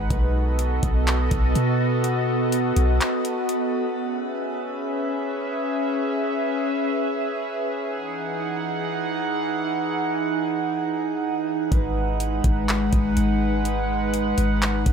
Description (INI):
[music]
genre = hip hop, atmospheric cloud-rap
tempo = 124 BPM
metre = 4/4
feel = half-time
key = C# minor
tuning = A4 = 441 Hz
[part]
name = warbly tape-like pad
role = sustained chords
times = 0.0-14.9 s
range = E3 to F#5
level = -23 LUFS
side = right 1 dB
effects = chorus, built-in reverb
[part]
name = clean 808-style bass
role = bass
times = 0.0-3.0, 11.7-14.9 s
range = G#1 to B2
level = -23 LUFS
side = equal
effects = none
[part]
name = nylon-string guitar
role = texture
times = 0.0-3.9, 11.7-14.9 s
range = G#3 to B4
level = -38 LUFS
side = left 2 dB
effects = none
[part]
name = smooth R&B drum kit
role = drums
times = 0.1-3.6, 11.7-14.9 s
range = handclaps, hi-hat, kick drum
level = -25 LUFS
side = equal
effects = none
[sound]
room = light reverb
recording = none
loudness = -21 LUFS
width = side -7 dB against mid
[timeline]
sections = 0.0-4.0 A section; 4.0-14.9 B section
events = break 3.0-4.0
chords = 0.1 B7; 4.0 C#m7; 7.8 Emaj9; 11.7 G#m7